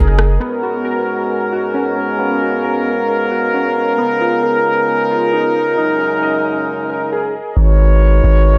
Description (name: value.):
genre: hip hop.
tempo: 134 BPM.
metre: 4/4.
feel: half-time.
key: G# dorian.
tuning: A4 = 442 Hz.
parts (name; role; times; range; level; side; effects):
warm brass ensemble; sustained chords; 0.0-8.6 s; F#2 to E#5; -18 LUFS; equal; none.
warbly lo-fi synth keys; arpeggios; 0.0-7.6 s; B3 to D#5; -23 LUFS; equal; chorus, low-pass filter, tape echo.
long sustained 808-style bass; bass; 0.0-0.4, 7.6-8.6 s; F#1 to G#1; -13 LUFS; equal; none.
room: light reverb, digital ambience.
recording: echo-heavy mix.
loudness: -16 LUFS.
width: mono.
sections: 0.4-7.6 A section; 7.6-8.6 B section.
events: none.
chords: 0.4 G#m11; 4.0 C#13; 5.8 F#69; 7.6 G#m11.